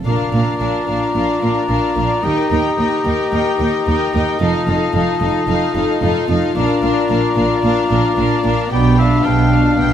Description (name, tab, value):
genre	quick classical-period movement for symphony orchestra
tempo	111 BPM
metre	4/4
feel	rubato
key	Bb major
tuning	A4 = 439 Hz
part	warm symphonic violin section	melody	0.1-9.9 s	F5 to G5	-26 LUFS	left 5 dB	none
part	dark studio violin section	second line	0.1-9.9 s	F4 to Bb4	-25 LUFS	left 6 dB	none
part	mellow concert flute	second line	0.1-9.9 s	G5 to B5	-24 LUFS	left 5 dB	none
part	warm clarinet	second line	0.1-9.9 s	D4 to G4	-21 LUFS	left 2 dB	none
part	warm oboe	second line	0.1-9.9 s	D5 to F5	-24 LUFS	right 1 dB	none
part	rich studio viola section	accompaniment	0.1-9.9 s	B3 to Eb4	-21 LUFS	equal	none
part	warm studio cello section	bass	0.1-9.9 s	Eb2 to B2	-21 LUFS	right 2 dB	none
part	warm studio double bass section	bass	0.1-9.9 s	F1 to Eb2	-21 LUFS	right 3 dB	none
room	moderate scoring stage reverb, RT60 1.5 s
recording	none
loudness	-14 LUFS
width	side -9 dB against mid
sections	0.1-9.9 A section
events	none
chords	0.1 Bb; 2.2 Eb; 4.4 F7; 6.6 Bb; 8.7 G7/B